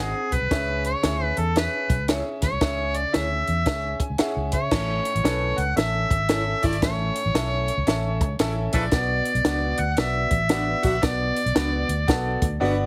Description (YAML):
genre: uptempo 1960s-style soul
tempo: 114 BPM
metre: 4/4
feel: swing 64% on 8ths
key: A major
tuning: A4 = 444 Hz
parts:
  - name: overdriven harmonica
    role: melody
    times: 0.0-12.6 s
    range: G#4 to F#5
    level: -28 LUFS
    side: equal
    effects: none
  - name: bright upright piano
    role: accompaniment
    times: 0.0-12.9 s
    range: A2 to G#5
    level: -32 LUFS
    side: equal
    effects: none
  - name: electric guitar through a small old amp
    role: stabs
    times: 0.0-12.7 s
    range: D4 to C#5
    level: -35 LUFS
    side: equal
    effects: analog chorus, slapback echo
  - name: vintage muted fingered electric bass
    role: bass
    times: 0.0-12.9 s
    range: G1 to C#3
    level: -29 LUFS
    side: equal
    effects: none
  - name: compact cocktail drum kit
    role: drums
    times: 0.3-12.5 s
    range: crash cymbal, hi-hat, kick drum, snare drum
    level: -28 LUFS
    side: equal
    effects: none
  - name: edgy saxophone section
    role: second line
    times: 6.3-12.8 s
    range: C#3 to F#4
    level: -33 LUFS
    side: equal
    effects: slapback echo
room: light reverb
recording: heavily compressed radio sound, multiband compression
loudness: -23 LUFS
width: mono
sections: 0.0-4.7 A section; 4.7-12.9 B section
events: upright piano fill 3.7-4.7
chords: 0.0 G#7; 0.5 C#m; 4.7 A; 8.9 Bm